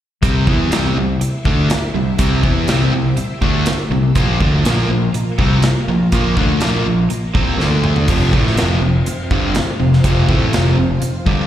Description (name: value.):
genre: classic rock.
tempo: 122 BPM.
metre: 4/4.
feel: straight.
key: C mixolydian.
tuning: A4 = 440 Hz.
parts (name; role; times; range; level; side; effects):
string machine, full ensemble; sustained chords; 0.2-11.5 s; A3 to F5; -27 LUFS; left 1 dB; ensemble chorus, plate reverb.
cranked stack guitar; riff; 0.2-11.5 s; F2 to E4; -20 LUFS; right 8 dB; overdrive, slapback echo.
sludgy distorted guitar; riff; 0.2-11.5 s; F2 to E4; -19 LUFS; left 6 dB; overdrive, slapback echo.
growling fingered electric bass; bass; 0.2-11.5 s; F1 to E2; -18 LUFS; equal; overdrive.
big rock drum kit; drums; 0.2-11.4 s; crash cymbal, hi-hat, kick drum, snare drum, toms; -19 LUFS; equal; none.
room: light reverb.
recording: live gig heard through the venue's PA, recital hall reverb.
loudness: -13 LUFS.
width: side -11 dB against mid.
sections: 0.2-11.5 A section.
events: drum fill 7.6-8.1.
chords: 0.2 C; 4.2 Bb5; 7.6 D5; 8.1 F5.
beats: | 0.23 0.72 1.21 1.70 | 2.19 2.69 3.18 3.67 | 4.16 4.65 5.14 5.63 | 6.12 6.61 7.10 7.59 | 8.08 8.57 9.06 9.55 | 10.04 10.53 11.02.